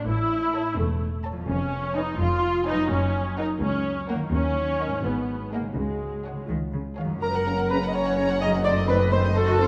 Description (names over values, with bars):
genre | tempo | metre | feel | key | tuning
cinematic, playful, whimsical film cue | 84 BPM (dotted quarters) | 6/8 | straight | F# major | A4 = 441 Hz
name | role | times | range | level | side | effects
rich studio viola section | accompaniment | 0.0-9.7 s | G#3 to F#4 | -29 LUFS | equal | none
concert harp | arpeggios | 0.0-9.7 s | E#2 to A4 | -37 LUFS | equal | none
rich studio double bass section | bass | 0.1-9.7 s | E1 to D#2 | -32 LUFS | equal | none
rich symphonic cello section | bass | 0.1-9.7 s | C#2 to D#3 | -32 LUFS | equal | none
rich studio violin section | melody | 0.5-9.7 s | C5 to A#5 | -38 LUFS | equal | none
warm studio violin section | second line | 0.5-9.7 s | G#4 to D#5 | -36 LUFS | equal | none
music box | melody | 7.2-9.7 s | A5 to D#6 | -35 LUFS | equal | none
bright flute section | second line | 7.2-9.7 s | A4 to D#5 | -33 LUFS | equal | none
warm clarinet | second line | 7.2-9.7 s | A4 to D#5 | -28 LUFS | equal | none
mellow French horn section | sustained chords | 7.5-9.7 s | C#3 to C#4 | -34 LUFS | equal | none
room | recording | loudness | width
moderate scoring stage reverb, RT60 1.9 s | none | -25 LUFS | mono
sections
0.0-7.2 A section; 7.2-9.7 B section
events
none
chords
0.1 A; 1.5 C#7/E#; 2.9 F#; 4.3 D#m; 5.0 G#m7; 5.8 C#sus4; 6.5 C#; 7.2 F#; 8.7 F#dim7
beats
| 0.07 0.78 | 1.49 2.20 | 2.91 3.62 | 4.33 5.04 | 5.77 6.50 | 7.22 7.94 | 8.65 9.36